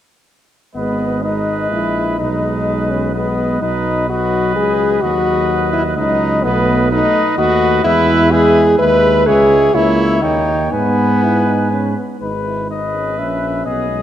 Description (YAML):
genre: classical, brass quintet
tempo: 126 BPM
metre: 3/4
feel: rubato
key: G# minor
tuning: A4 = 440 Hz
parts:
  - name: mellow cornet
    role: melody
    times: 0.8-14.0 s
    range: B4 to G#5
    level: -21 LUFS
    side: left 6 dB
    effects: none
  - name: clear trumpet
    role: second line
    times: 0.8-14.0 s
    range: G#4 to C#5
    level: -22 LUFS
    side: right 6 dB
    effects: none
  - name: clear French horn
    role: accompaniment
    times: 0.8-14.0 s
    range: B3 to B4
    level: -16 LUFS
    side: left 1 dB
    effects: none
  - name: mellow trombone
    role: accompaniment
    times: 0.8-14.0 s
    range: F#3 to E4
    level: -23 LUFS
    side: right 2 dB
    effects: none
  - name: mellow tuba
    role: bass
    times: 0.8-14.0 s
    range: G#1 to G#2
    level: -19 LUFS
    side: right 2 dB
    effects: none
room: wet scoring stage reverb, RT60 2.0 s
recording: none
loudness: -13 LUFS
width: side -11 dB against mid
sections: 0.8-12.2 A section; 12.2-14.0 A section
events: none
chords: 0.8 G#m; 2.2 G#m/B; 3.6 B; 5.0 B/D#; 6.4 B7; 7.8 E; 9.3 C#m; 9.7 A#dim/C#; 10.2 D#7; 10.7 G#m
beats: | 0.75 1.23 1.71 | 2.19 2.67 3.14 | 3.62 4.09 4.56 | 5.03 5.50 5.97 | 6.44 6.91 7.37 | 7.84 8.32 8.79 | 9.27 9.74 10.23 | 10.72 11.23 11.72 | 12.22 12.71 13.19 | 13.67